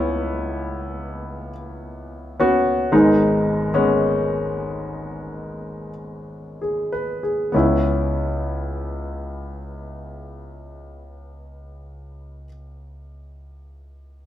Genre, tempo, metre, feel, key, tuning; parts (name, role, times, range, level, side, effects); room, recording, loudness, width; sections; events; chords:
pop; 48-59 BPM; 4/4; straight; C# minor; A4 = 440 Hz
warm grand piano; accompaniment; 0.0-14.3 s; G#1 to B4; -20 LUFS; equal
wet studio reverb, RT60 0.8 s; band playing live in one room; -19 LUFS; side -12 dB against mid
0.0-7.5 A section; 7.5-12.6 B section
slowing down 0.0-7.5
0.0 C#m7; 2.9 G#m; 7.5 C#m7